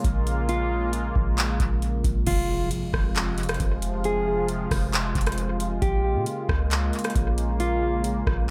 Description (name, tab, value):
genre	hip hop, atmospheric cloud-rap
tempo	135 BPM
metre	4/4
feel	half-time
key	F minor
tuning	A4 = 440 Hz
part	sweeping resonant pad	sustained chords	0.0-8.5 s	C3 to F4	-32 LUFS	equal	chorus, sidechain pumping
part	soft 808-style bass	bass	0.0-8.5 s	F1 to Bb2	-29 LUFS	equal	none
part	booming analog drum machine	drums	0.0-8.5 s	crash cymbal, handclaps, hi-hat, kick drum, rim click	-28 LUFS	equal	analog delay
part	mellow electric guitar	melody	0.5-8.0 s	F4 to Ab4	-30 LUFS	equal	analog delay
part	impact	sound effects	2.3-4.0 s	none	-39 LUFS	equal	none
room	little or no reverb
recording	echo-heavy mix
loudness	-25 LUFS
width	mono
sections	0.0-2.3 A section; 2.3-8.5 B section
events	impact 2.3-4.0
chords	0.0 Bbm7; 2.3 Fm; 5.8 Bbm7